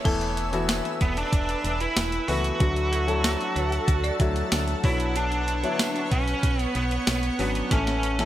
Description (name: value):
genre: 1980s-style pop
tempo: 94 BPM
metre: 4/4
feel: straight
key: unclear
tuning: A4 = 440 Hz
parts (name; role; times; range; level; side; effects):
- folk marimba with hard mallets; second line; 0.0-4.6 s; A4 to D5; -37 LUFS; equal; digital delay
- warm baby grand piano; accompaniment; 0.0-8.3 s; D3 to C#5; -30 LUFS; left 3 dB; none
- shimmering ambient pad; sustained chords; 0.0-8.3 s; A4 to E6; -32 LUFS; right 1 dB; chorus, built-in reverb
- solid FM bass; bass; 0.1-8.3 s; E1 to D2; -28 LUFS; equal; none
- clean 12-bit digital drum machine; drums; 0.1-8.3 s; crash cymbal, hi-hat, kick drum, snare drum, tambourine; -26 LUFS; equal; overdrive, gated reverb
- tambourine; percussion; 0.7-7.2 s; none; -44 LUFS; right 6 dB; none
- smooth overdriven lead guitar; melody; 1.0-8.3 s; B3 to F#4; -28 LUFS; right 2 dB; none
room: light reverb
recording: none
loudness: -22 LUFS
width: side -13 dB against mid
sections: 0.0-8.3 A section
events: drum fill 7.7-8.3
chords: 0.1 Esus4; 2.6 Dadd9; 4.8 Bmadd9; 7.7 A